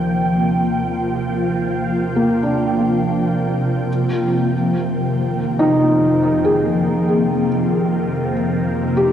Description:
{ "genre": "ambient", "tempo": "71 BPM", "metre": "3/4", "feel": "straight", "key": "F dorian", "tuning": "A4 = 438 Hz", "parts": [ { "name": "ethereal airy pad", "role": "sustained chords", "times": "0.0-9.1 s", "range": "C3 to G5", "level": "-17 LUFS", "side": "equal", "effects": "ensemble chorus, built-in reverb, phaser" }, { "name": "felt-muted upright piano", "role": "arpeggios", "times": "0.0-9.1 s", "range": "Bb3 to Ab4", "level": "-20 LUFS", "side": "equal", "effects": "tape echo" }, { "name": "dark symphonic double bass section", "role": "bass", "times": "0.0-9.1 s", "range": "Eb2 to F2", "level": "-32 LUFS", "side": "equal", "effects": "none" } ], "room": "wet lush hall reverb, RT60 2.4 s", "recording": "home recording on cassette", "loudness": "-16 LUFS", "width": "side -9 dB against mid", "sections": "0.0-9.1 A section", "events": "fade-in on double bass section 0.0-9.1", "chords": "0.0 Ebmaj7; 3.9 Fm9" }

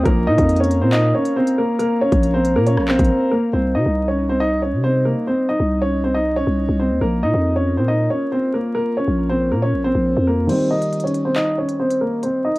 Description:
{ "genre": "hip hop, drill", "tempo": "138 BPM", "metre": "4/4", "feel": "half-time", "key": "C phrygian", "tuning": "A4 = 440 Hz", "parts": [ { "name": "warm upright piano", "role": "melody", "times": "0.0-12.6 s", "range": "Bb3 to Eb5", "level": "-18 LUFS", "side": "equal", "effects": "low-pass filter, cassette tape" }, { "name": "dark concert grand piano", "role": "accompaniment", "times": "0.0-3.6, 10.5-12.6 s", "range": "Eb3 to Bb4", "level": "-26 LUFS", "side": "equal", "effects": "low-pass filter, cassette tape" }, { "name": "glass harmonica", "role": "sustained chords", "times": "0.0-10.5 s", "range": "G3 to Bb5", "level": "-30 LUFS", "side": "equal", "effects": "stereo widening, cassette tape" }, { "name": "growling 808-style bass", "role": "bass", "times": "0.0-10.5 s", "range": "Bb1 to C3", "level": "-19 LUFS", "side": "equal", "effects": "none" }, { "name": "drill drum kit", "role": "drums", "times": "0.1-3.1, 10.5-12.6 s", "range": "crash cymbal, handclaps, hi-hat, kick drum, rim click", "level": "-23 LUFS", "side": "equal", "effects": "cassette tape" } ], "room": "little or no reverb", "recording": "home recording on cassette, vinyl crackle", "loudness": "-16 LUFS", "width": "side -20 dB against mid", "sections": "0.0-3.5 A section; 3.5-10.5 B section; 10.5-12.6 C section", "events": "break 3.1-3.5; kick muted 10.5-12.6; filter sweep 10.5-12.6", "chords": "0.1 Bbm; 3.5 Cm; 7.0 Bbm; 10.5 Cm" }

